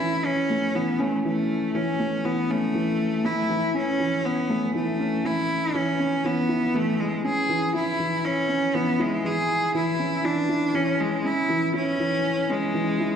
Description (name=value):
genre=electronica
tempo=120 BPM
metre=4/4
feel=straight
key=F# minor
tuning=A4 = 440 Hz
part: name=clear cello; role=melody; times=0.0-13.2 s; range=G#3 to G#4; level=-24 LUFS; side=equal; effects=none
part: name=felt-muted upright piano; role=riff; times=0.0-13.2 s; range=E3 to E4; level=-26 LUFS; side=equal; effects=none
room=wet recital hall reverb, RT60 1.6 s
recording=none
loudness=-22 LUFS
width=side -7 dB against mid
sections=0.0-13.2 A section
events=none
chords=0.0 F#m7 (rootless); 5.7 C#m